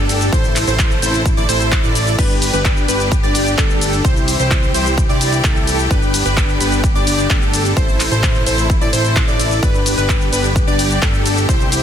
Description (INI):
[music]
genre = EDM, festival progressive house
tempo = 129 BPM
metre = 4/4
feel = straight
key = G major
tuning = A4 = 440 Hz
[part]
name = rich studio string section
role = sustained chords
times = 0.0-11.8 s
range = C3 to G4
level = -25 LUFS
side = left 2 dB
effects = sidechain pumping
[part]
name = plucky unison lead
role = arpeggios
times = 0.0-11.8 s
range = A4 to D5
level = -22 LUFS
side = right 1 dB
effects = sidechain pumping, ping-pong delay
[part]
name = dense compressed supersaw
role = riff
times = 0.0-11.8 s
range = D4 to D5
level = -21 LUFS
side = equal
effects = sidechain pumping, ping-pong delay
[part]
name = fat analog bass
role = bass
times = 0.0-11.8 s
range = G1 to C2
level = -20 LUFS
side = equal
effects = sidechain pumping
[part]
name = big-room dance drum kit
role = drums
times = 0.1-11.8 s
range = crash cymbal, handclaps, hi-hat, ride cymbal, shaker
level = -21 LUFS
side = left 1 dB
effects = none
[part]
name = electronic kick drum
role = drums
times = 0.3-11.6 s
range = none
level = -16 LUFS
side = equal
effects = none
[sound]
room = light reverb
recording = dense, heavily limited modern master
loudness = -13 LUFS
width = side -9 dB against mid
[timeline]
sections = 0.0-11.8 A section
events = none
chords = 0.3 Am; 2.2 G; 4.0 C; 5.9 G; 7.8 Am; 9.6 G